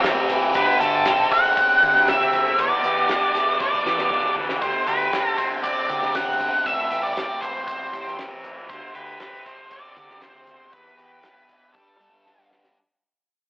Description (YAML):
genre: psychedelic rock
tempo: 118 BPM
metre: 4/4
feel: straight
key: unclear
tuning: A4 = 442 Hz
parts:
  - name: fuzz guitar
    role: riff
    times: 0.0-12.8 s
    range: E2 to A4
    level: -23 LUFS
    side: equal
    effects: distortion, phaser
  - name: fuzz fingered electric bass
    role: bass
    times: 0.0-12.6 s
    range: A1 to G3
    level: -31 LUFS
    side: equal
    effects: overdrive
  - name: damped 70s drum kit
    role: drums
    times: 0.0-12.8 s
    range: hi-hat, kick drum, snare drum, toms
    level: -29 LUFS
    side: equal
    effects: none
  - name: octave-fuzz lead guitar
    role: melody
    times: 0.6-12.5 s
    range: A4 to F#5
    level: -21 LUFS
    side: equal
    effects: distortion
room: wet stone room reverb, RT60 1.1 s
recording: rough rehearsal-room recording, telephone sound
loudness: -18 LUFS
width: side -24 dB against mid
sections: 0.0-12.8 A section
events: fade-out 0.0-12.8; drum fill 3.6-4.6, 12.3-12.8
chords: 0.0 Am7; 0.6 D7sus4; 2.6 Em7; 4.6 D7sus4; 6.7 Am7; 8.7 D7sus4; 10.7 Em7; 11.7 Gsus2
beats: 0.05 | 0.56 1.07 1.57 2.08 | 2.59 3.10 3.60 4.11 | 4.62 5.13 5.64 6.15 | 6.66 7.17 7.67 8.18 | 8.69 9.20 9.71 10.22 | 10.73 11.24 11.75 12.26